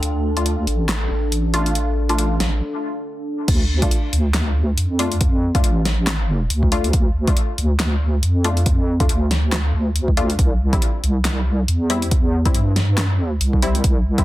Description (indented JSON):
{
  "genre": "deep dubstep",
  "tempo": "139 BPM",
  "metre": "4/4",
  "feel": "swing 58% on 16ths, half-time",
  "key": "D minor",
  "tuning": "A4 = 439 Hz",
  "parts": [
    { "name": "deep dark ambient pad", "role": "sustained chords", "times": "0.0-3.5 s", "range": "D4 to A4", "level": "-28 LUFS", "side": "left 1 dB", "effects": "chorus, built-in reverb" },
    { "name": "deep soft wobble bass", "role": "bass", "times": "0.0-14.2 s", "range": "A1 to G2", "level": "-19 LUFS", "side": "equal", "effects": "chorus" },
    { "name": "deep house drum kit", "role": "drums", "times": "0.0-14.2 s", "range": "crash cymbal, handclaps, hi-hat, snare drum", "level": "-24 LUFS", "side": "left 1 dB", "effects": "none" },
    { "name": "filtered dub chord stab", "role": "stabs", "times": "0.4-14.2 s", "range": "G3 to F4", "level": "-26 LUFS", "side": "left 3 dB", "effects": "chorus, cassette tape, dub echo" },
    { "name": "electronic kick drum", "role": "drums", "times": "3.5-14.2 s", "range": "none", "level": "-18 LUFS", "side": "equal", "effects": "none" }
  ],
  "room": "light reverb, digital ambience",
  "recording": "dense, heavily limited modern master",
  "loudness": "-16 LUFS",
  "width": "side -16 dB against mid",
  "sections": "0.0-3.5 A section; 3.5-14.2 B section",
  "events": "build-up 0.0-3.5; break 2.6-3.5; drop 3.5-14.2",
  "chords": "0.0 Dm; 10.4 C",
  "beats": "| 0.03 0.46 0.89 1.32 | 1.75 2.19 2.62 3.05 | 3.48 3.91 4.34 4.78 | 5.21 5.64 6.07 6.50 | 6.93 7.37 7.80 8.23 | 8.66 9.09 9.52 9.96 | 10.39 10.82 11.25 11.68 | 12.11 12.55 12.98 13.41 | 13.84"
}